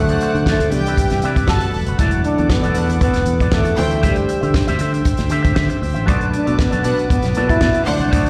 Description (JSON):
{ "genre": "disco", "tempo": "118 BPM", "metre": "4/4", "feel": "straight", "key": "unclear", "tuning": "A4 = 440 Hz", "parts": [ { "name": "breathy trombone", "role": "melody", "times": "0.0-8.3 s", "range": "G3 to E4", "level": "-23 LUFS", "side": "equal", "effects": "slapback echo" }, { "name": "rich studio string section", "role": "second line", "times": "0.0-8.1 s", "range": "D4 to A5", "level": "-28 LUFS", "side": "equal", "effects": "slapback echo" }, { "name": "reed electric piano", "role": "accompaniment", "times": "0.0-8.3 s", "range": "B2 to F#4", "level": "-28 LUFS", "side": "equal", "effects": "none" }, { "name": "bright tonewheel organ", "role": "sustained chords", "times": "0.0-8.3 s", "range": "A4 to E6", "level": "-32 LUFS", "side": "equal", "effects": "overdrive, slow rotary speaker" }, { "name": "fingered electric bass", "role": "bass", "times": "0.0-8.3 s", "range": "E1 to D3", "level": "-22 LUFS", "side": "equal", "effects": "none" }, { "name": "electric guitar with an envelope filter", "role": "accompaniment", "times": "0.1-8.3 s", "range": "B3 to E5", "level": "-27 LUFS", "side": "equal", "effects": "spring reverb, slapback echo" }, { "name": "warm soul drum kit", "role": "drums", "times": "0.1-8.3 s", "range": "hi-hat, kick drum, snare drum", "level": "-22 LUFS", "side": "equal", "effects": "none" } ], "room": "studio reverb", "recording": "live gig heard through the venue's PA, recital hall reverb", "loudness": "-17 LUFS", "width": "mono", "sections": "0.0-2.0 A section; 2.0-8.3 B section", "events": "none", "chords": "0.0 D7; 0.7 Cmaj9; 1.5 Gmaj9; 2.0 E9sus4; 3.8 D9sus4; 6.1 Bm7" }